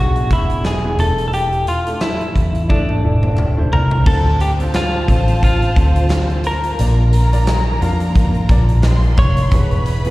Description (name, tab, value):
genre	piano-driven pop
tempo	88 BPM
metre	4/4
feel	swing 56% on 16ths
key	D minor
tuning	A4 = 440 Hz
part	clean electric guitar	melody	0.0-9.8 s	D4 to C#5	-21 LUFS	left 1 dB	slapback echo
part	clear baby grand piano	accompaniment	0.0-10.1 s	Bb2 to F5	-26 LUFS	equal	none
part	vintage muted fingered electric bass	bass	0.0-10.1 s	E1 to F2	-16 LUFS	equal	none
part	huge arena drum kit	drums	0.2-10.1 s	crash cymbal, hi-hat, kick drum, snare drum, toms	-19 LUFS	equal	none
part	group handclap	percussion	0.6-9.0 s	none	-39 LUFS	left 1 dB	none
part	rich studio violin section	second line	4.1-10.1 s	Bb4 to C6	-27 LUFS	left 1 dB	slapback echo
part	warm studio string section	sustained chords	4.1-10.1 s	D3 to F4	-32 LUFS	equal	none
room	small room reverb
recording	live gig heard through the venue's PA, recital hall reverb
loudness	-13 LUFS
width	side -18 dB against mid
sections	0.0-4.1 A section; 4.1-10.1 B section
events	drum fill 2.7-4.1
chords	0.0 E7; 1.0 Asus4/E; 4.1 Dm7; 6.8 Bb; 9.5 E7